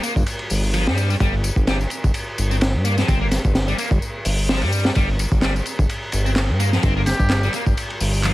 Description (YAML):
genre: breakbeat, breaks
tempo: 128 BPM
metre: 4/4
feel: swing 55% on 16ths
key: G minor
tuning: A4 = 442 Hz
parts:
  - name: distorted electric guitar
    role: riff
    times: 0.0-8.3 s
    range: F3 to C4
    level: -27 LUFS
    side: left 1 dB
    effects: distortion, vintage 12-bit sampler grit, ping-pong delay
  - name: crunchy breakbeat drum kit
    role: drums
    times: 0.0-8.3 s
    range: hi-hat, kick drum, ride cymbal, snare drum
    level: -21 LUFS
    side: equal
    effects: none
  - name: electronic tambourine and handclaps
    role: drums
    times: 0.0-8.3 s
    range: none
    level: -30 LUFS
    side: left 2 dB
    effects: none
  - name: fat analog bass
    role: bass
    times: 0.2-8.3 s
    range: G1 to G2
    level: -20 LUFS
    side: equal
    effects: tube saturation
  - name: trumpet with metal mute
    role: melody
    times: 7.1-7.5 s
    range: G4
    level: -27 LUFS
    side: left 1 dB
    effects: old record sound, ping-pong delay
room: studio reverb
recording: vinyl crackle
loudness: -17 LUFS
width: side -17 dB against mid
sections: 0.0-8.3 A section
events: none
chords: none